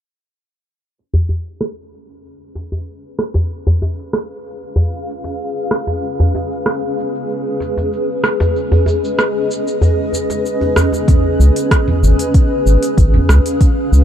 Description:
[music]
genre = organic downtempo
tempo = 95 BPM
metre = 4/4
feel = straight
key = Db mixolydian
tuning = A4 = 441 Hz
[part]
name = granular cloud pad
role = sustained chords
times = 3.6-14.0 s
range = Db4 to F5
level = -19 LUFS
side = equal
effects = built-in reverb, sidechain pumping
[part]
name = organic electronic drum kit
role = drums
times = 1.0-14.0 s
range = cabasa, hi-hat, rim click, toms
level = -19 LUFS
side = right 1 dB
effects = low-pass filter on perc, low-pass filter on snare, low-pass filter on hats, low-pass filter on toms, low-pass filter on room
[part]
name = djembe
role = percussion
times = 1.1-11.0 s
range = none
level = -16 LUFS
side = equal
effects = none
[part]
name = electronic kick drum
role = drums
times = 11.1-13.7 s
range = none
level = -12 LUFS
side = equal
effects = none
[part]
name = round analog bass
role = bass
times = 11.4-14.0 s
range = Ab1 to Db2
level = -9 LUFS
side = equal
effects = tube saturation
[sound]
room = little or no reverb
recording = dark, warm production, low-pass filter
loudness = -13 LUFS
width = side -10 dB against mid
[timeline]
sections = 1.0-11.1 A section; 11.1-14.0 B section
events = filter sweep on drum 1.0-11.1; filter sweep on ambient pad 1.0-11.1; filter sweep 1.0-11.1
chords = 1.0 Db7; 6.0 Abm/Db; 11.1 Abm

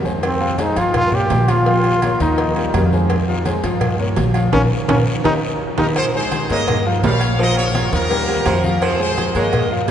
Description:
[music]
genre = latin, salsa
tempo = 168 BPM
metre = 4/4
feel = straight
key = F minor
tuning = A4 = 444 Hz
[part]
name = clear baby grand piano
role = accompaniment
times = 0.0-9.9 s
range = Eb3 to F5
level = -22 LUFS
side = left 2 dB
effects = none
[part]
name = upright bass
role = bass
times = 0.0-9.9 s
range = Bb1 to G2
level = -20 LUFS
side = right 1 dB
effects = none
[part]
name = congas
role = percussion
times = 0.1-9.9 s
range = none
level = -26 LUFS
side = left 1 dB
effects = none
[part]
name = guiro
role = percussion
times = 0.1-9.9 s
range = none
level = -36 LUFS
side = left 4 dB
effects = none
[part]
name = agogo bells and timbales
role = percussion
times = 0.2-9.9 s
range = none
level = -25 LUFS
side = right 5 dB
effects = none
[part]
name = cowbell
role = percussion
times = 0.2-9.7 s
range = none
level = -27 LUFS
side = left 2 dB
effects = none
[part]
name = brilliant trombone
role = melody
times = 0.3-5.9 s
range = C4 to G4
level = -22 LUFS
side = equal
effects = none
[part]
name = brilliant trumpet section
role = melody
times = 5.8-9.7 s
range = G4 to F5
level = -22 LUFS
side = equal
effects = none
[part]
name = breathy baritone saxophone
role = second line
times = 6.0-9.9 s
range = Eb3 to Ab3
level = -24 LUFS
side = right 2 dB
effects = none
[sound]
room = wet cathedral reverb, RT60 6.6 s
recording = recorded in a church or concert hall, nothing above 10.5 kHz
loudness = -15 LUFS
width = side -9 dB against mid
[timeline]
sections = 0.0-6.0 A section; 6.0-9.9 B section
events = band accent 4.5-6.0; drum fill 5.4-6.0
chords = 0.2 Fm; 0.9 Gm7b5; 1.7 Bbm; 2.4 Eb; 3.1 Fm; 3.8 Gm7b5; 4.5 Bbm; 5.2 Eb; 6.0 Fm; 6.7 Gm7b5; 7.4 Bbm; 8.1 Eb; 8.8 Fm

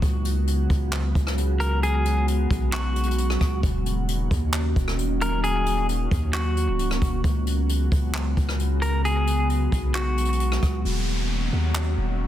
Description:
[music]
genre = hip hop, atmospheric cloud-rap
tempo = 133 BPM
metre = 4/4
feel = half-time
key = Eb minor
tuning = A4 = 440 Hz
[part]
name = glassy FM pad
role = sustained chords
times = 0.0-12.3 s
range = Db3 to Gb4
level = -28 LUFS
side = equal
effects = ensemble chorus, built-in reverb
[part]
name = long sustained 808-style bass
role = bass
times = 0.0-12.3 s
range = Db1 to Eb2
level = -24 LUFS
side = equal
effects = none
[part]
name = jazz brush drum kit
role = drums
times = 0.0-11.9 s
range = handclaps, hi-hat, kick drum, rim click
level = -27 LUFS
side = equal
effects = soft clipping on snare
[part]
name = downlifter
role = sound effects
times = 0.0, 10.9-12.3 s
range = none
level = -32 LUFS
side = equal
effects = none
[part]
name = semi-hollow electric guitar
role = melody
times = 1.6-10.8 s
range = Gb4 to Bb4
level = -29 LUFS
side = left 1 dB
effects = spring reverb, low-pass filter, digital delay
[sound]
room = small room ambience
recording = dense, heavily limited modern master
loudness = -21 LUFS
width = side -12 dB against mid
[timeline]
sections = 0.0-10.9 A section; 10.9-12.3 B section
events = none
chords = 0.0 Db7sus4; 3.6 Ebm7; 7.2 Db7sus4; 10.9 Ebm7

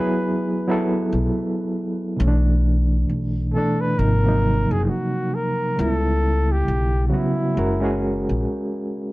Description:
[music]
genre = lo-fi hip hop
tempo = 67 BPM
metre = 4/4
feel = swing 62% on 16ths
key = unclear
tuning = A4 = 440 Hz
[part]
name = breathy flugelhorn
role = melody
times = 0.0-8.0 s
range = E4 to B4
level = -26 LUFS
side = left 1 dB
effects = low-pass filter
[part]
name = overdriven reed electric piano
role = accompaniment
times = 0.0-9.1 s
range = B2 to B4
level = -22 LUFS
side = right 1 dB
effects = fast tremolo, low-pass filter
[part]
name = upright bass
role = bass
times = 1.1-8.4 s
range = F#1 to C#2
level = -21 LUFS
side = equal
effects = none
[sound]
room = light reverb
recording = cassette tape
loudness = -19 LUFS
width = side -19 dB against mid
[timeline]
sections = 0.0-2.2 A section; 2.2-9.1 A section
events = none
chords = 0.0 B5; 2.2 Bm7; 4.0 G#7; 5.8 C#m7b5; 7.6 F#

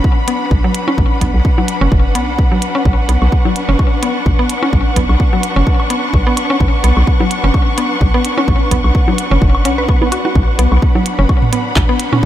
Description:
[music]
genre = minimal techno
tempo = 128 BPM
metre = 4/4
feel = swing 56% on 16ths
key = B minor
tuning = A4 = 440 Hz
[part]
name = electronic kick drum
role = drums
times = 0.0-12.3 s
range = none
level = -13 LUFS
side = equal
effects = none
[part]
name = dark studio string section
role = texture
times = 0.0-12.3 s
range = D4 to C#6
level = -19 LUFS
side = equal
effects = sidechain pumping
[part]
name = mallet-like synth pluck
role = riff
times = 0.3-12.2 s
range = F#3 to B4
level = -18 LUFS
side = left 1 dB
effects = chorus, vintage 12-bit sampler grit, sidechain pumping, ping-pong delay
[part]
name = minimal click drum kit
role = drums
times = 0.3-12.1 s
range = handclaps, hi-hat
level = -20 LUFS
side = right 2 dB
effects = none
[part]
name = hollow knocking FM bass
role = bass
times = 0.5-12.3 s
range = F#1 to B1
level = -14 LUFS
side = equal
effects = tube saturation, sidechain pumping
[part]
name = electronic bongos, woodblock and toms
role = percussion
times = 0.9-12.2 s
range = none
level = -23 LUFS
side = right 1 dB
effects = ping-pong delay
[sound]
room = light reverb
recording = none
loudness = -11 LUFS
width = side -12 dB against mid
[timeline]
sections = 0.0-12.3 A section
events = none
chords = 0.0 Bm

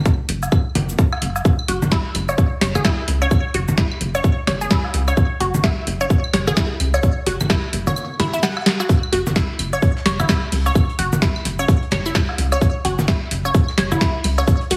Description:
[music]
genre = minimal techno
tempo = 129 BPM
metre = 4/4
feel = swing 60% on 16ths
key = unclear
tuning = A4 = 440 Hz
[part]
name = rubbery square bass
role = bass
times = 0.0-14.8 s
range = F#1 to C#2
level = -25 LUFS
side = equal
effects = sidechain pumping
[part]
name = booming analog drum machine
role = drums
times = 0.1-14.8 s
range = cabasa, hi-hat, snare drum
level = -25 LUFS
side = equal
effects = none
[part]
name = electronic kick drum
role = drums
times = 0.1-14.6 s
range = none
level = -19 LUFS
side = equal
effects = none
[part]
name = woodblock, claves and congas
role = percussion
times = 0.4-14.5 s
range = none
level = -28 LUFS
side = equal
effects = digital delay
[part]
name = resonant blip pluck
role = riff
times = 1.7-14.7 s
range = E4 to F#5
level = -26 LUFS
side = equal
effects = phaser, sidechain pumping, digital delay
[part]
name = soft brush drum kit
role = drums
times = 8.9-14.8 s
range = hi-hat, snare drum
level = -41 LUFS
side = equal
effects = none
[sound]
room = light reverb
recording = heavily compressed radio sound, multiband compression, small room ambience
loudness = -19 LUFS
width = mono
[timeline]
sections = 0.0-14.8 A section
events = drum fill 8.7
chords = 0.0 F#5

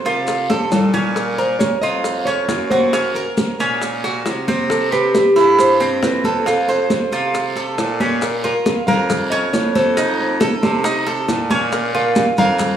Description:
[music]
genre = latin, Cuban son and guajira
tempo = 136 BPM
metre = 4/4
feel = straight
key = Bb harmonic minor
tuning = A4 = 445 Hz
[part]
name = nylon-string guitar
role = melody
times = 0.0-12.8 s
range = A4 to F5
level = -21 LUFS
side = equal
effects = none
[part]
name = Cuban tres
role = arpeggios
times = 0.0-12.8 s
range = C4 to C5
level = -18 LUFS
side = right 2 dB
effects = none
[part]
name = raspy baritone saxophone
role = bass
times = 0.1-12.8 s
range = F2 to C3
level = -23 LUFS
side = right 1 dB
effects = none
[part]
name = congas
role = percussion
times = 0.1-12.8 s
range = none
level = -22 LUFS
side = equal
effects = none
[part]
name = guiro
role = percussion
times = 0.1-12.8 s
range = none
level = -35 LUFS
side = equal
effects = none
[part]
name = maracas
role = percussion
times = 0.1-12.8 s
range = none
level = -35 LUFS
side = right 2 dB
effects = none
[part]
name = bongos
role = percussion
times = 0.3-12.8 s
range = none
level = -27 LUFS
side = left 5 dB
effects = none
[sound]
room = wet lush hall reverb, RT60 2.9 s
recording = rough home demo mix, studio reverb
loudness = -15 LUFS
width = side -9 dB against mid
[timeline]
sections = 0.0-8.2 A section; 8.2-12.8 B section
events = drum fill 0.5-1.2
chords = 0.0 F; 1.2 Bbm; 2.9 Gb; 4.7 C; 6.5 F; 8.2 Bbm; 10.0 F7; 11.7 Bbm

